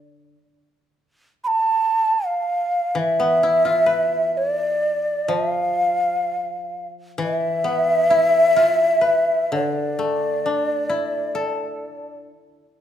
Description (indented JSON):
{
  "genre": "japanese traditional, Japanese chamber music",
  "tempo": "free time",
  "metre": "none",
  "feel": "none",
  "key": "D kumoi",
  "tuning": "A4 = 441 Hz",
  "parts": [
    { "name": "koto", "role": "accompaniment", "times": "0.0-12.8 s", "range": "D3 to B4", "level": "-26 LUFS", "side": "left 2 dB", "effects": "none" },
    { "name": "breathy mellow shakuhachi", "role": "melody", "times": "1.4-12.2 s", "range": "D5 to B5", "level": "-18 LUFS", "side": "equal", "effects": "none" }
  ],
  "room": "moderate recital hall reverb, RT60 1.8 s",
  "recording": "minimal, uncompressed stereo recording",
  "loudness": "-18 LUFS",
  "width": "side -10 dB against mid",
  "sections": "0.1-12.8 A section",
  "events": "none",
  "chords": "none"
}